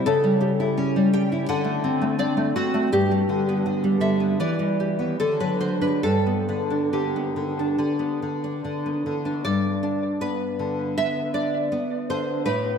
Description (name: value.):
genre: romantic piece for solo classical guitar.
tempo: 66-86 BPM.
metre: 4/4.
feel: rubato.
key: G major.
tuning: A4 = 440 Hz.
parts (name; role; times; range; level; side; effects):
nylon-string guitar; solo; 0.0-12.8 s; G2 to G5; -21 LUFS; equal; analog chorus, analog delay.
room: wet lush hall reverb, RT60 2.1 s.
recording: dreamy mix soaked in reverb.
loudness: -21 LUFS.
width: side -6 dB against mid.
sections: 0.0-9.4 A section; 9.4-12.8 B section.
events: none.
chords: 0.1 A7/C#; 1.5 D7; 2.9 G; 4.4 Em; 5.2 D; 6.0 G.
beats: | 0.05 0.77 1.49 2.20 | 2.92 3.63 4.37 5.17 | 6.02 6.92 7.79 8.63 | 9.45 10.21 10.98 11.73 | 12.47.